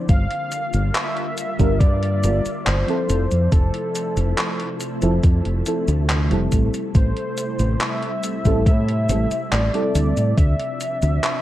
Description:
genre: vaporwave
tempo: 70 BPM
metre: 4/4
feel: straight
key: G dorian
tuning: A4 = 439 Hz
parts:
  - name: mellow FM electric piano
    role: accompaniment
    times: 0.0-10.4 s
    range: F3 to Bb4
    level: -26 LUFS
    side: equal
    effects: tremolo, analog chorus, vintage 12-bit sampler grit, analog delay
  - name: soft string machine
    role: sustained chords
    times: 0.0-11.4 s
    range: C3 to F4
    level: -30 LUFS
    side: equal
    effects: ensemble chorus, vintage 12-bit sampler grit
  - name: warm velvety synth lead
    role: melody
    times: 0.1-11.4 s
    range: A4 to F5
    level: -27 LUFS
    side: equal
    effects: chorus, vintage 12-bit sampler grit, tape echo
  - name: fingered electric bass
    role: bass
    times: 0.1-11.2 s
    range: F1 to A2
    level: -19 LUFS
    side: equal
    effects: none
  - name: electronic kick drum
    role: drums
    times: 0.1-10.6 s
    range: none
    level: -17 LUFS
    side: equal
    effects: none
  - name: gated 80s digital drum machine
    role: drums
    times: 0.1-11.4 s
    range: cabasa, handclaps, hi-hat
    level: -26 LUFS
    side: equal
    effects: gated reverb
room: little or no reverb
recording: echo-heavy mix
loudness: -18 LUFS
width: side -14 dB against mid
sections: 0.0-11.4 A section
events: none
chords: 0.1 Gm7; 3.1 Fmaj7; 6.5 Am7; 10.4 Dm9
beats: | 0.10 0.95 1.81 2.67 | 3.52 4.38 5.24 6.09 | 6.95 7.81 8.67 9.52 | 10.38 11.24

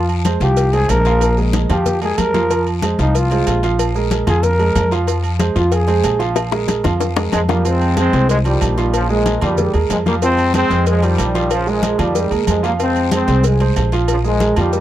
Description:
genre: latin, salsa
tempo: 186 BPM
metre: 4/4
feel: straight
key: F minor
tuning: A4 = 440 Hz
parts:
  - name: growling trombone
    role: melody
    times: 0.0-6.2 s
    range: Eb4 to Bb4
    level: -18 LUFS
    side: equal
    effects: none
  - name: warm baby grand piano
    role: accompaniment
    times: 0.0-14.8 s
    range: F3 to F5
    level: -21 LUFS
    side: right 5 dB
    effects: none
  - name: upright bass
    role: bass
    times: 0.0-14.8 s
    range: Bb1 to F2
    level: -18 LUFS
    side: equal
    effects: none
  - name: agogo bells and timbales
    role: percussion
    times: 0.1-14.7 s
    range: none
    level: -27 LUFS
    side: right 6 dB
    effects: none
  - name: congas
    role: percussion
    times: 0.1-14.8 s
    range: none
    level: -24 LUFS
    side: left 3 dB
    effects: none
  - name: maracas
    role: percussion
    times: 0.1-14.8 s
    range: none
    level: -33 LUFS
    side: right 22 dB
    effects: none
  - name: guiro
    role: percussion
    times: 0.2-14.8 s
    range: none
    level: -33 LUFS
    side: left 18 dB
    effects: none
  - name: cowbell and bongos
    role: percussion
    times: 0.3-14.8 s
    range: none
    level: -25 LUFS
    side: left 9 dB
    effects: none
  - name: clear trombone section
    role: melody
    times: 7.3-14.8 s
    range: Db3 to C4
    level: -18 LUFS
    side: left 1 dB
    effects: none
room: little or no reverb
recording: dry, close 1970s-style studio recording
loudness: -14 LUFS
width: side -12 dB against mid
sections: 0.0-7.7 A section; 7.7-14.8 B section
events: trombone solo 0.0-7.7; drum fill 1.2-2.5, 6.4-7.7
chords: 0.0 Fm; 1.2 Bb5; 2.5 Fm; 3.8 Bb5; 5.1 Fm; 6.4 Bb5; 7.7 Fm7; 8.9 Bb7(no3); 10.2 Fm7; 11.5 Bb7(no3); 12.8 Fm; 14.1 Bb7(no3)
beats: 0.25 0.57 0.90 | 1.22 1.54 1.86 2.18 | 2.50 2.83 3.15 3.47 | 3.79 4.11 4.43 4.75 | 5.08 5.40 5.72 6.04 | 6.36 6.68 7.01 7.33 | 7.65 7.97 8.29 8.62 | 8.94 9.26 9.58 9.90 | 10.22 10.54 10.87 11.19 | 11.51 11.83 12.15 12.47 | 12.80 13.12 13.44 13.76 | 14.09 14.41 14.73

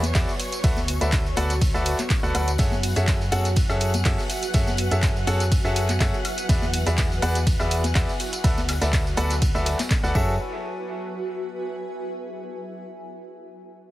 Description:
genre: piano house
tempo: 123 BPM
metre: 4/4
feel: swing 53% on 16ths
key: F# minor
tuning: A4 = 440 Hz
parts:
  - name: warm symphonic string section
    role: sustained chords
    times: 0.0-10.2 s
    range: C#5 to F#6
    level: -36 LUFS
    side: equal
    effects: sidechain pumping
  - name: organ-like FM bass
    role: bass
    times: 0.0-10.4 s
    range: D2 to F#2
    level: -25 LUFS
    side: equal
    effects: sidechain pumping
  - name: garage drum kit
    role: drums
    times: 0.0-10.1 s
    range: handclaps, hi-hat, ride cymbal, tambourine, woodblock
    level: -29 LUFS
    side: equal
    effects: none
  - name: vintage brush drum kit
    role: drums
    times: 0.0-10.1 s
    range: hi-hat, snare drum, tambourine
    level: -38 LUFS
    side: right 1 dB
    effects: none
  - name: congas and tambourine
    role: percussion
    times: 0.0-10.4 s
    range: none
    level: -36 LUFS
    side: left 4 dB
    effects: none
  - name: granular cloud pad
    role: texture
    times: 0.0-12.3 s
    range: F#4 to G#5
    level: -33 LUFS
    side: equal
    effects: built-in reverb, sidechain pumping
  - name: bright concert grand piano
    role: riff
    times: 0.1-10.3 s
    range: F#4 to F#5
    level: -28 LUFS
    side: equal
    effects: sidechain pumping, dub echo
  - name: electronic kick drum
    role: drums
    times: 0.1-10.3 s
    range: none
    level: -23 LUFS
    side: equal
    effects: none
room: light reverb, studio reverb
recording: heavily compressed radio sound, multiband compression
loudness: -20 LUFS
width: side -16 dB against mid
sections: 0.0-10.4 A section; 10.4-12.3 B section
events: drop 0.0-10.4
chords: 0.0 E9; 0.6 D69; 2.6 F#m9; 6.2 E9; 8.4 D69; 10.2 F#m9; 10.4 F#sus2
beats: 0.15 | 0.64 1.13 1.61 2.10 | 2.59 3.08 3.56 4.05 | 4.54 5.03 5.52 6.00 | 6.49 6.98 7.47 7.96 | 8.44 8.93 9.42 9.91 | 10.39 10.88 11.37 11.86

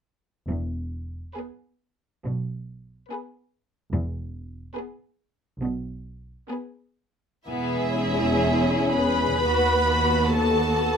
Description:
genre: classical, slow romantic movement for string orchestra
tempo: 58-74 BPM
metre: 4/4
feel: rubato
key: E major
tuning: A4 = 440 Hz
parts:
  - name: dark studio double bass section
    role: bass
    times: 0.5-11.0 s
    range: E1 to D#2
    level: -28 LUFS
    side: equal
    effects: none
  - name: rich studio cello section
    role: bass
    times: 0.5-11.0 s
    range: D#2 to B2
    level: -29 LUFS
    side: right 2 dB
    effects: none
  - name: rich studio violin section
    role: melody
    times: 1.3-11.0 s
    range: B4 to B5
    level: -27 LUFS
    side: equal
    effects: none
  - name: rich studio violin section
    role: second line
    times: 1.4-11.0 s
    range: B3 to G#4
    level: -26 LUFS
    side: left 1 dB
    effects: none
  - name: warm studio viola section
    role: accompaniment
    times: 1.4-11.0 s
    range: B3 to B4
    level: -27 LUFS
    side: right 1 dB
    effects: none
room: light reverb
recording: minimal, uncompressed stereo recording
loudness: -22 LUFS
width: side -7 dB against mid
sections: 0.5-7.5 A section; 7.5-11.0 B section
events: none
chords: 0.5 E; 9.4 B/D#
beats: | 0.48 1.36 2.25 3.11 | 3.93 4.75 5.61 6.49 | 7.48 8.46 9.43 10.32

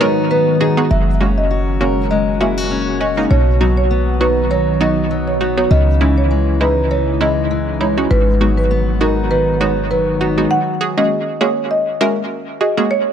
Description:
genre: dancehall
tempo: 100 BPM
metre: 4/4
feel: swing 56% on 16ths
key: unclear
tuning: A4 = 441 Hz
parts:
  - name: marimba with medium mallets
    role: melody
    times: 0.0-13.0 s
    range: A#4 to F#5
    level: -19 LUFS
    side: right 1 dB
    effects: dub echo
  - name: analog pluck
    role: accompaniment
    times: 0.0-12.9 s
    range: F#3 to A#4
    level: -20 LUFS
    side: right 2 dB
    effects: chorus, dub echo
  - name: ethereal airy pad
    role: sustained chords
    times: 0.0-10.5 s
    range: C#3 to F#4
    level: -23 LUFS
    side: equal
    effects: ensemble chorus, built-in reverb
  - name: fingerpicked steel-string acoustic guitar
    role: arpeggios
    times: 0.0-11.1 s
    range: G#2 to A#4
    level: -21 LUFS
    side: left 4 dB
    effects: dub echo
  - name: clean 808-style bass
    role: bass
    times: 0.9-10.5 s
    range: F#1 to C#2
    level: -18 LUFS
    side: equal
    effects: none
room: digital ambience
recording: echo-heavy mix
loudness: -13 LUFS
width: side -8 dB against mid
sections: 0.9-10.5 A section; 10.5-13.1 B section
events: none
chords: 0.0 G#m7; 0.9 F#add9; 3.3 B; 5.7 C#madd9; 8.1 G#m7; 10.5 F#add9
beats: 0.31 | 0.91 1.51 2.11 2.71 | 3.31 3.91 4.51 5.11 | 5.71 6.31 6.91 7.51 | 8.11 8.71 9.31 9.91 | 10.51 11.11 11.71 12.31 | 12.91

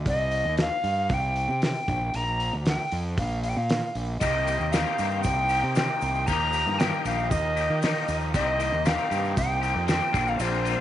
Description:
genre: psychedelic rock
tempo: 116 BPM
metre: 4/4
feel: straight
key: C minor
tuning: A4 = 440 Hz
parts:
  - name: fuzz fingered electric bass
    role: bass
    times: 0.0-10.8 s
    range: Bb1 to Eb3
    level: -29 LUFS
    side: right 1 dB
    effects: overdrive
  - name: bright silver concert flute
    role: melody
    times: 0.1-10.8 s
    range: C5 to Bb5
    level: -27 LUFS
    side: equal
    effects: slapback echo
  - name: cloth-damped thuddy drum kit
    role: drums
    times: 0.1-10.8 s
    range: hi-hat, kick drum, snare drum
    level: -29 LUFS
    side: equal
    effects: none
  - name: overdriven combo organ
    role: sustained chords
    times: 4.2-10.8 s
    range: C4 to Bb4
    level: -35 LUFS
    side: right 12 dB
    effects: none
  - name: twangy electric guitar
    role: riff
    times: 4.2-10.8 s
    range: Bb2 to G4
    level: -30 LUFS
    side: left 12 dB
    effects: rotary speaker
  - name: tube shaker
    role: percussion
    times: 4.2-10.8 s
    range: none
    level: -46 LUFS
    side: right 15 dB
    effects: none
room: light reverb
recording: 1960s-style stereo with parts hard left and right, nothing above 10.6 kHz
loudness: -23 LUFS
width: side -12 dB against mid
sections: 0.0-10.8 A section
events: none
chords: 0.1 Cm; 1.9 Bb5; 4.2 Cm7; 6.3 Ebadd9; 8.3 Cm7; 10.1 Bbadd9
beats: | 0.06 0.58 1.10 1.62 | 2.14 2.66 3.18 3.70 | 4.21 4.73 5.25 5.77 | 6.28 6.80 7.32 7.83 | 8.35 8.86 9.37 9.88 | 10.40

